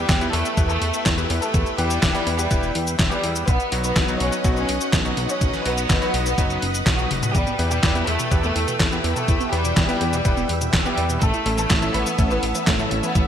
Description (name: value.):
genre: italo disco.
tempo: 124 BPM.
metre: 4/4.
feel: straight.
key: E dorian.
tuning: A4 = 440 Hz.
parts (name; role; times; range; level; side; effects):
clear studio violin section; melody; 0.0-13.3 s; G3 to C#5; -25 LUFS; equal; digital delay.
string machine, full ensemble; sustained chords; 0.0-13.3 s; B4 to E6; -29 LUFS; equal; phaser, ensemble chorus.
clear electric grand piano; stabs; 0.0-13.3 s; F#3 to B4; -29 LUFS; left 2 dB; none.
chorused synth bass; bass; 0.0-13.3 s; E1 to E2; -26 LUFS; equal; none.
detuned 8-bit digital drum machine; drums; 0.1-13.3 s; cabasa, handclaps, hi-hat, snare drum, toms; -24 LUFS; equal; gated reverb.
electronic kick drum; drums; 0.1-13.3 s; none; -22 LUFS; equal; none.
warbly dusty pluck; arpeggios; 7.3-13.2 s; B2 to E4; -29 LUFS; right 4 dB; chorus, cassette tape, digital delay.
room: moderate lush hall reverb, RT60 1.9 s, digital ambience.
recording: bright 1980s-style digital production.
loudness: -18 LUFS.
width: side -9 dB against mid.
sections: 0.0-13.3 A section.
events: drum fill 7.1.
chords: 0.0 Em; 3.5 B; 7.3 Em; 11.2 A.